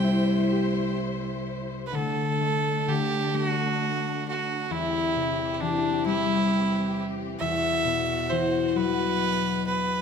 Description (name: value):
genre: celtic folk, Celtic slow air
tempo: 44 BPM (dotted quarters)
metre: 6/8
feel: rubato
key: D mixolydian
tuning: A4 = 440 Hz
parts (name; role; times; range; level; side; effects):
- clear fiddle; melody; 0.0-10.0 s; D4 to G5; -27 LUFS; right 5 dB; none
- concert harp; accompaniment; 0.0-10.0 s; C2 to G4; -26 LUFS; left 4 dB; none
- clear symphonic string section; sustained chords; 0.0-10.0 s; B2 to C5; -32 LUFS; equal; none
room: moderate recital hall reverb, RT60 1.4 s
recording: none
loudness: -24 LUFS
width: side -6 dB against mid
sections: 0.0-1.9 A section; 1.9-10.0 B section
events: none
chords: 0.0 C; 1.9 D; 4.7 C/E; 7.4 Esus2